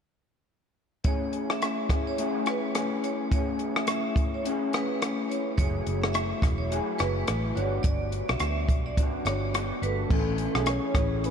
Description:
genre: indie pop, bedroom pop.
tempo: 106 BPM.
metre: 4/4.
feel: swing 60% on 16ths.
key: A major.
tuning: A4 = 440 Hz.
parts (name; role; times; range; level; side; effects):
electric guitar through a small old amp; accompaniment; 1.0-11.3 s; F#3 to G#4; -30 LUFS; left 3 dB; analog chorus, warbly pitch drift.
compact cocktail drum kit; drums; 1.0-11.3 s; crash cymbal, hi-hat, kick drum, rim click; -28 LUFS; equal; none.
vibraphone with hard mallets; second line; 1.1-10.0 s; B4 to E5; -35 LUFS; right 4 dB; lush chorus, diffuse ambient delay.
vintage muted fingered electric bass; bass; 5.6-11.3 s; E1 to D2; -30 LUFS; equal; none.
warm velvety synth lead; melody; 9.9-11.3 s; A4 to C#5; -32 LUFS; right 2 dB; tremolo, wide subtle chorus, diffuse ambient delay.
warbly lo-fi synth keys; accompaniment; 10.1-11.3 s; E3 to G#5; -38 LUFS; right 8 dB; chorus.
room: moderate cathedral reverb, RT60 5.2 s.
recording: dreamy mix soaked in reverb.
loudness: -25 LUFS.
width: side -7 dB against mid.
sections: 1.0-10.1 A section; 10.1-11.3 B section.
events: none.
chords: 1.0 Amaj7; 5.6 F#m9; 7.6 Gmaj7; 10.1 Amaj7.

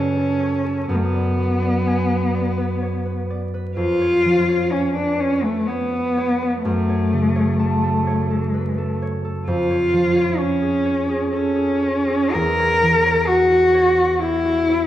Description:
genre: classical, romantic duo for cello and harp.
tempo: 63 BPM.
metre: 3/4.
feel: rubato.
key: F# minor.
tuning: A4 = 440 Hz.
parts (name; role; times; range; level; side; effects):
warm cello; melody; 0.0-14.9 s; A3 to A#4; -18 LUFS; left 1 dB; none.
concert harp; accompaniment; 0.0-14.9 s; E2 to C#6; -22 LUFS; right 1 dB; none.
room: moderate scoring stage reverb, RT60 1.8 s.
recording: dark, warm production, vinyl crackle.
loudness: -17 LUFS.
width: side -12 dB against mid.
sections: 0.0-14.9 A section.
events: none.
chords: 0.0 F#m; 0.9 G#m7b5/F#; 3.8 C#7/E#; 6.6 F#m; 9.5 C#/E#; 12.3 F#7/E.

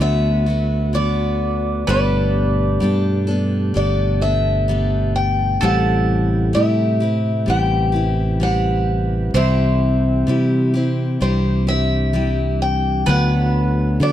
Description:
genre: acoustic folk duo or small band.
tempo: 64 BPM.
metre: 4/4.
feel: straight.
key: G major.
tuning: A4 = 436 Hz.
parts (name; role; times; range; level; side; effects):
picked acoustic archtop guitar; melody; 0.0-14.1 s; C5 to G5; -23 LUFS; left 1 dB; none.
bowl-back mandolin; second line; 0.0-14.1 s; F#4 to C5; -26 LUFS; right 4 dB; none.
picked steel-string acoustic guitar; accompaniment; 0.0-14.1 s; A2 to A4; -22 LUFS; left 3 dB; none.
mellow tonewheel organ; sustained chords; 0.0-14.1 s; B2 to B4; -28 LUFS; right 3 dB; slow rotary speaker.
fingered electric bass; bass; 0.0-14.1 s; G1 to D3; -18 LUFS; right 1 dB; none.
room: little or no reverb.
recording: dry, close 1970s-style studio recording.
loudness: -16 LUFS.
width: side -11 dB against mid.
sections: 0.0-14.1 A section.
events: none.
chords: 0.0 D6; 1.9 Gadd9; 5.6 Am7; 9.3 C; 13.1 D6.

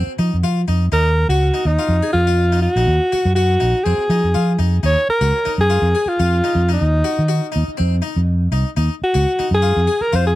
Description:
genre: afrobeat.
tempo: 122 BPM.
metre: 4/4.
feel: swing 53% on 16ths.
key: Eb dorian.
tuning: A4 = 441 Hz.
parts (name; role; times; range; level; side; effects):
harpsichord; arpeggios; 0.0-10.3 s; C4 to Ab4; -26 LUFS; left 7 dB; none.
fingered electric bass; bass; 0.0-10.3 s; Bb1 to F3; -16 LUFS; equal; none.
bright alto saxophone; melody; 0.9-10.4 s; Eb4 to Db5; -18 LUFS; equal; tape echo.
room: little or no reverb.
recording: dry, close 1970s-style studio recording.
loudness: -14 LUFS.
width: side -16 dB against mid.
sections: 0.0-4.8 A section; 4.8-10.4 B section.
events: none.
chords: 0.0 F5; 0.9 Ebm7; 1.9 Fm7; 2.9 Ebm; 3.9 Fm7; 4.8 Ebm7; 5.8 Fm7; 6.8 Ebm; 7.8 F5; 8.8 Ebm; 9.8 Fm.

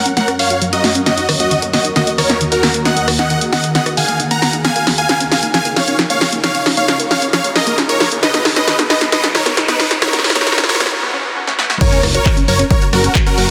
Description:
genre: uplifting trance.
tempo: 134 BPM.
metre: 4/4.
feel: straight.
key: F# major.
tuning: A4 = 440 Hz.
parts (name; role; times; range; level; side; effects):
supersaw chords; melody; 0.0-13.5 s; D#4 to A#5; -20 LUFS; equal; sidechain pumping, delay.
plucky unison lead; second line; 0.0-13.5 s; A#4 to A#5; -24 LUFS; equal; phaser, cassette tape, sidechain pumping, delay.
shimmering ambient pad; sustained chords; 0.0-13.5 s; C#2 to C#5; -26 LUFS; equal; chorus, built-in reverb, phaser, sidechain pumping.
tight sequenced synth; arpeggios; 0.1-13.4 s; D#3 to B4; -26 LUFS; equal; chorus, phaser, sidechain pumping, delay.
punchy analog drum machine; drums; 0.1-13.5 s; crash cymbal, handclaps, hi-hat, rim click, snare drum; -18 LUFS; equal; sidechain pumping on hats, sidechain pumping on cymbals.
riser, swell and sub drop; sound effects; 6.9-13.5 s; none; -28 LUFS; equal; none.
electronic kick drum; drums; 11.8-13.2 s; none; -17 LUFS; equal; none.
fat analog bass; bass; 12.0-13.5 s; F#1; -19 LUFS; equal; sidechain pumping.
room: wet huge ambient reverb, RT60 4.2 s.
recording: dense, heavily limited modern master, high-pass filter.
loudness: -14 LUFS.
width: mono.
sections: 0.0-11.8 A section; 11.8-13.5 B section.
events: build-up 0.0-11.8; drum fill 0.0-10.9, 11.5-11.8; filter sweep on synth arpeggio sound 0.0-11.8; break 10.9-11.8; drop 11.8-13.5; impact 11.8-13.5.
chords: 0.0 F#; 1.1 D#m; 4.6 C#6; 8.2 Badd9; 11.8 F#.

